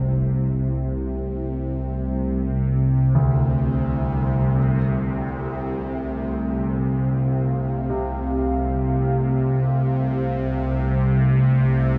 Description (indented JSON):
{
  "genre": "dark ambient drone",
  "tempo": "free time",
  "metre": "none",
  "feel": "none",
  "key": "unclear",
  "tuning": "A4 = 440 Hz",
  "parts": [
    { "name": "deep dark ambient pad", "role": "sustained chords", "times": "0.6-12.0 s", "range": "A3 to F5", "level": "-34 LUFS", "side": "equal", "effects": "chorus, built-in reverb" },
    { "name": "bowed-like drone", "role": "drone", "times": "0.0-12.0 s", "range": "C2 to C3", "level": "-22 LUFS", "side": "equal", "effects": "built-in reverb, phaser" },
    { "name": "dark concert grand piano", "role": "arpeggios", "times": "3.1-12.0 s", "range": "D2 to C3", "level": "-31 LUFS", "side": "equal", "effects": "diffuse ambient delay" }
  ],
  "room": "moderate huge ambient reverb, RT60 9.2 s",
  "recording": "dark, warm production",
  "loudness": "-22 LUFS",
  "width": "mono",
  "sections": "0.0-12.0 A section",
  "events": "fade-in on ambient pad 0.0-12.0; filter sweep on synth drone 0.0-12.0",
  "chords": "0.0 Am; 4.6 Fadd9"
}